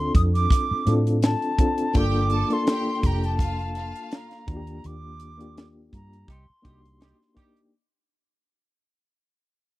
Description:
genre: lush 1970s-style soul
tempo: 83 BPM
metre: 4/4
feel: swing 54% on 16ths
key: C dorian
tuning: A4 = 440 Hz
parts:
  - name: silver concert flute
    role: melody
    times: 0.0-7.4 s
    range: A5 to Eb6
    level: -29 LUFS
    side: equal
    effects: none
  - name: reed electric piano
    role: accompaniment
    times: 0.0-7.8 s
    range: Bb3 to A4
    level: -28 LUFS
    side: left 1 dB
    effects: fast tremolo
  - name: vintage muted fingered electric bass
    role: bass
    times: 0.0-7.1 s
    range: F1 to A2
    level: -25 LUFS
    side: equal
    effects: none
  - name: tight funk drum kit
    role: drums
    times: 0.1-7.7 s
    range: hi-hat, kick drum, snare drum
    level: -22 LUFS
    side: equal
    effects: none
  - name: rich studio violin section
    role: second line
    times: 1.9-4.4 s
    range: F4 to A5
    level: -36 LUFS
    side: right 2 dB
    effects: none
  - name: warm horn section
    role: stabs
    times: 6.3-7.6 s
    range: G3 to G4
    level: -66 LUFS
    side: right 5 dB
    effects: none
room: small room ambience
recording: dry, close 1970s-style studio recording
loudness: -20 LUFS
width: side -17 dB against mid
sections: 0.0-7.7 A section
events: fade-out 0.0-7.7; band accent 4.8-7.7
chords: 0.0 Dm7; 1.9 Gm7; 4.5 Ebmaj9; 6.3 Cm9

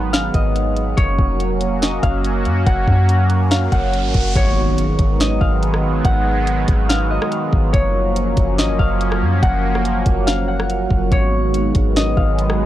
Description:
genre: hip hop, atmospheric cloud-rap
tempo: 142 BPM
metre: 4/4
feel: half-time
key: G# dorian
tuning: A4 = 441 Hz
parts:
  - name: Celtic harp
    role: melody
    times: 0.0-12.7 s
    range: C#5 to F#5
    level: -23 LUFS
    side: left 2 dB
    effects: low-pass filter, tape echo
  - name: sweeping resonant pad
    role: sustained chords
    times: 0.0-12.7 s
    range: D#3 to F#4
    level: -21 LUFS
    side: right 2 dB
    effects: chorus
  - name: soft 808-style bass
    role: bass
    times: 0.0-12.7 s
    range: E#1 to F#2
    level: -19 LUFS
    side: equal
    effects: none
  - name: smooth R&B drum kit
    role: drums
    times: 0.1-12.6 s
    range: hi-hat, kick drum, rim click, snare drum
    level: -18 LUFS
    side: equal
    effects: none
  - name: riser and impact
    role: sound effects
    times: 3.4-6.0 s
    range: none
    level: -28 LUFS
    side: equal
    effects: none
room: little or no reverb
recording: dry, gritty hardware recording, cassette tape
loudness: -15 LUFS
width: side -13 dB against mid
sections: 0.0-4.4 A section; 4.4-12.7 B section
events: riser 3.4-4.4; impact 4.4-6.0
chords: 0.0 G#m7; 1.0 F#maj7; 4.4 G#m7; 7.7 F#maj7; 11.1 G#m7

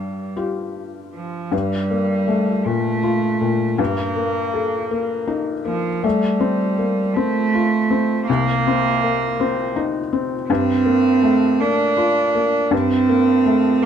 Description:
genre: neoclassical piano and strings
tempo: 54 BPM (dotted quarters)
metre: 6/8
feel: rubato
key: G minor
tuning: A4 = 436 Hz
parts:
  - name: rich cello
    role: second line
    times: 0.0-13.9 s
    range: F3 to D4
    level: -19 LUFS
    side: right 4 dB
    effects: none
  - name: felt-muted upright piano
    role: accompaniment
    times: 0.0-13.9 s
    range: C2 to A4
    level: -20 LUFS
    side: left 4 dB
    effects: none
room: moderate studio reverb, RT60 0.8 s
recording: none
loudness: -17 LUFS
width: side -8 dB against mid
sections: 0.0-1.5 A section; 1.5-13.9 B section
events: none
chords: 0.0 Fsus2/G; 1.5 Gm7; 3.8 Eb/G; 6.0 Fadd9; 8.3 Cm7; 10.5 Gm7; 12.7 Eb/G (rootless)

